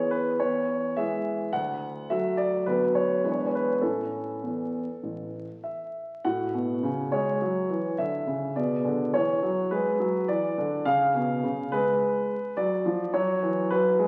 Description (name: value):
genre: classical-period piano sonatina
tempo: 104 BPM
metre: 4/4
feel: rubato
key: A major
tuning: A4 = 440 Hz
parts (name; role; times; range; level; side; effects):
- warm concert grand piano; solo; 0.0-14.1 s; A1 to F#5; -27 LUFS; equal; none
room: wet recital hall reverb, RT60 1.6 s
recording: very old 78 rpm record, vinyl crackle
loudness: -27 LUFS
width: mono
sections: 0.0-6.2 A section; 6.2-14.1 B section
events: none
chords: 0.4 C#m/E; 1.5 D; 2.7 Bm/D; 3.2 E7; 3.8 A; 6.2 F#m/A; 8.6 G#m7b5/B; 10.9 C#7; 13.1 F#5